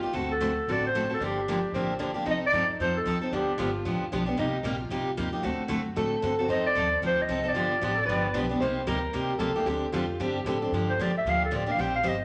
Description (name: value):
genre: acoustic string swing (jazz manouche)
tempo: 227 BPM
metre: 4/4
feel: swing 57% on 8ths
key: G minor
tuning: A4 = 441 Hz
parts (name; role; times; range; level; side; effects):
- picked old ladder-braced acoustic guitar; second line; 0.0-10.7 s; C4 to C5; -36 LUFS; equal; none
- picked steel-string acoustic guitar; accompaniment; 0.0-12.2 s; C3 to C5; -32 LUFS; equal; none
- upright bass; bass; 0.0-12.2 s; G1 to A2; -38 LUFS; equal; none
- breathy clarinet; melody; 0.3-3.8, 6.5-8.5, 10.9-12.2 s; G4 to G5; -29 LUFS; equal; none
room: wet large studio reverb, RT60 1.1 s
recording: none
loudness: -28 LUFS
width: mono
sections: 0.0-2.3 A section; 2.3-10.7 B section; 10.7-12.2 C section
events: clarinet solo 10.7-12.2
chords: 0.1 D7; 1.2 Gm7; 2.3 F7; 3.3 G7; 4.4 Cm7; 5.4 D7; 6.5 F7; 7.6 G7; 8.6 Cm7; 9.7 D7sus4; 10.7 Gm7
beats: | 0.14 0.41 0.67 0.94 | 1.20 1.47 1.73 2.00 | 2.26 2.52 2.79 3.06 | 3.32 3.58 3.85 4.11 | 4.38 4.64 4.91 5.17 | 5.44 5.70 5.96 6.23 | 6.50 6.76 7.02 7.29 | 7.55 7.82 8.08 8.35 | 8.61 8.88 9.14 9.40 | 9.67 9.93 10.20 10.46 | 10.73 10.99 11.26 11.52 | 11.79 12.05